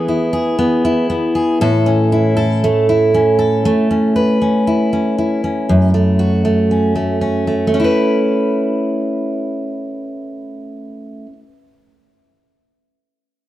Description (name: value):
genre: pop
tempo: 118 BPM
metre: 4/4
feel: swing 60% on 16ths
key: A major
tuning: A4 = 440 Hz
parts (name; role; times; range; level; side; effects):
- fingerpicked steel-string acoustic guitar; solo; 0.0-11.4 s; F#2 to B4; -14 LUFS; equal; none
room: light reverb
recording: dark, warm production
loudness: -13 LUFS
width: side -14 dB against mid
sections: 0.0-3.6 A section; 3.6-7.7 B section; 7.7-11.8 C section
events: none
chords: 0.0 E; 1.6 A; 3.6 Aadd9; 5.7 F#m; 7.7 Aadd9